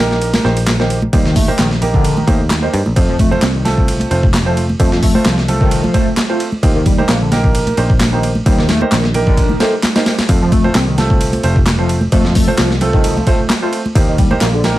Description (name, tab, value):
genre	breakbeat, breaks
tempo	131 BPM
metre	4/4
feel	swing 54% on 16ths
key	F mixolydian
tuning	A4 = 440 Hz
part	warm grand piano	stabs	0.0-14.8 s	A3 to C5	-19 LUFS	right 3 dB	tape echo
part	picked electric bass	bass	0.0-14.8 s	F1 to G2	-17 LUFS	equal	none
part	breakbeat sampler-style drum kit	drums	0.1-14.8 s	hi-hat, kick drum, ride cymbal, snare drum	-15 LUFS	equal	overdrive
part	congas	percussion	0.3-14.7 s	none	-23 LUFS	right 1 dB	none
part	electronic handclaps	drums	0.7-14.5 s	none	-22 LUFS	equal	none
part	overdriven synth lead	riff	0.8-14.6 s	D3 to F4	-19 LUFS	left 1 dB	distortion, phaser, ensemble chorus, tape echo
room	light reverb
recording	vinyl crackle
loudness	-11 LUFS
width	side -15 dB against mid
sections	0.0-14.8 A section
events	none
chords	0.0 Eb6; 3.0 F; 6.6 Eb6; 10.3 F; 14.0 Eb6